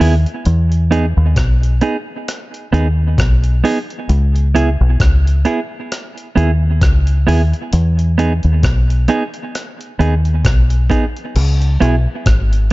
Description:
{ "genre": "roots reggae", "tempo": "66 BPM", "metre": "4/4", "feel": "swing 57% on 16ths", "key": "unclear", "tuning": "A4 = 440 Hz", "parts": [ { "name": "clean electric guitar", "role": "accompaniment", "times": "0.0-12.0 s", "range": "B3 to G#4", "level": "-19 LUFS", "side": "right 4 dB", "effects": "tape echo" }, { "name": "deep dub fingered electric bass", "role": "bass", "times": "0.0-12.7 s", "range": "G#1 to E2", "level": "-12 LUFS", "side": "equal", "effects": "none" }, { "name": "breakbeat sampler-style drum kit", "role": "drums", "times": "0.0-12.7 s", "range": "crash cymbal, hi-hat, kick drum, rim click", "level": "-17 LUFS", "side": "equal", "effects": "none" } ], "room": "little or no reverb", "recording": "dark, warm production, nothing above 7.6 kHz", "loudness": "-12 LUFS", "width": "side -20 dB against mid", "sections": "0.0-11.4 A section; 11.4-12.7 B section", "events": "none", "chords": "0.0 Emaj7; 4.1 C#m7; 7.7 Emaj7; 11.4 C#7(no3)" }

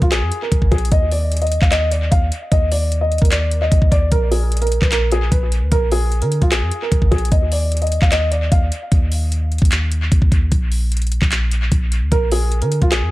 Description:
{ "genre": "hip hop, trap", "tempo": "150 BPM", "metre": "4/4", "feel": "half-time", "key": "unclear", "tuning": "A4 = 440 Hz", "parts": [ { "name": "dark baby grand piano", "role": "melody", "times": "0.0-8.7, 12.1-13.1 s", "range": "F4 to F5", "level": "-21 LUFS", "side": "equal", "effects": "low-pass filter, dub echo" }, { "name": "warm 808-style bass", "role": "bass", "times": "0.0-13.1 s", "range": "Ab1 to D3", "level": "-18 LUFS", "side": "equal", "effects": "none" }, { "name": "trap drum kit", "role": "drums", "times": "0.0-13.0 s", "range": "handclaps, hi-hat, kick drum", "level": "-18 LUFS", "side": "equal", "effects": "dub echo" } ], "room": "digital ambience", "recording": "echo-heavy mix", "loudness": "-14 LUFS", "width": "side -18 dB against mid", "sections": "0.0-13.1 A section", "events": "none", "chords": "0.0 N.C.; 0.9 Bbadd11/Eb (rootless); 4.1 N.C." }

